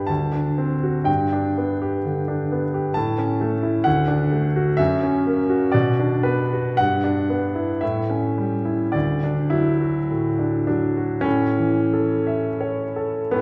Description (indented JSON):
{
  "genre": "classical, romantic character piece for solo piano",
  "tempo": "50-68 BPM",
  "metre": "2/4",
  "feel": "rubato",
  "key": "D major",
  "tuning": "A4 = 441 Hz",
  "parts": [
    { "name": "clear grand piano", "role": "solo", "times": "0.0-13.4 s", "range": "D2 to B5", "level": "-22 LUFS", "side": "equal", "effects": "none" }
  ],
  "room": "wet concert hall reverb, RT60 2.3 s",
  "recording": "recorded in a church or concert hall",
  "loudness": "-22 LUFS",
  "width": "mono",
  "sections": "0.0-11.3 A section; 11.3-13.4 B section",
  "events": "none",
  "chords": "0.1 D7; 1.1 G; 3.0 A; 3.9 D; 4.8 F#7; 5.7 Bm; 6.8 Em7/G; 7.8 A7; 8.9 D; 11.3 A",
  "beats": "0.09 | 1.08 2.05 | 2.96 3.86 | 4.79 5.74 | 6.79 7.82 | 8.94 10.11 | 11.25 12.28 | 13.36"
}